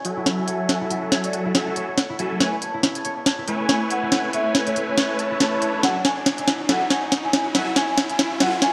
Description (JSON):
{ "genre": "future bass", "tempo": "140 BPM", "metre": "4/4", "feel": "swing 56% on 16ths, half-time", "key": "F# minor", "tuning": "A4 = 440 Hz", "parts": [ { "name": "warm velvety synth lead", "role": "melody", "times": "0.0-8.7 s", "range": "C#5 to A5", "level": "-29 LUFS", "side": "equal", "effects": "chorus, delay" }, { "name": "concert harp", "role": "arpeggios", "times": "0.0-8.7 s", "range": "E4 to G#5", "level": "-33 LUFS", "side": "equal", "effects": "low-pass filter, delay" }, { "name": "supersaw chords", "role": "riff", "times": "0.0-8.5 s", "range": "F#3 to A5", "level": "-28 LUFS", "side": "equal", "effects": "phaser, low-pass filter" }, { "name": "trap drum kit", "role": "drums", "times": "0.0-8.7 s", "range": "hi-hat, snare drum", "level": "-23 LUFS", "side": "equal", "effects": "none" }, { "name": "riser", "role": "sound effects", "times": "1.8-8.7 s", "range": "none", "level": "-35 LUFS", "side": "equal", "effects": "none" } ], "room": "moderate lush hall reverb, RT60 1.9 s", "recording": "high-pass filter", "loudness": "-22 LUFS", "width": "mono", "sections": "0.0-8.7 A section", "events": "build-up 0.0-8.7; drum fill 0.0-8.7; filter sweep on supersaw synth 0.0-8.7; filter sweep on soft synth lead 0.0-8.7; riser 1.8-8.7", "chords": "0.0 F#m7; 2.4 Amaj7; 5.8 F#m7" }